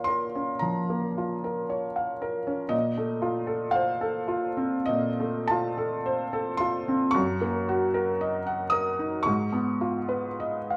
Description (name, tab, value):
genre	classical, romantic nocturne for solo piano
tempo	46-60 BPM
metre	4/4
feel	rubato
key	Eb minor from 7.2 s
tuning	A4 = 445 Hz
part	felt-muted upright piano	solo	0.0-10.8 s	Gb2 to Eb6	-28 LUFS	equal	none
room	moderate large studio reverb, RT60 1.1 s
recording	heard from further back in the room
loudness	-28 LUFS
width	mono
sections	0.0-10.8 A section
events	none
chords	0.0 Bbm; 2.7 F7/Bb; 7.2 Ebm/Gb; 9.3 Fm7b5/Ab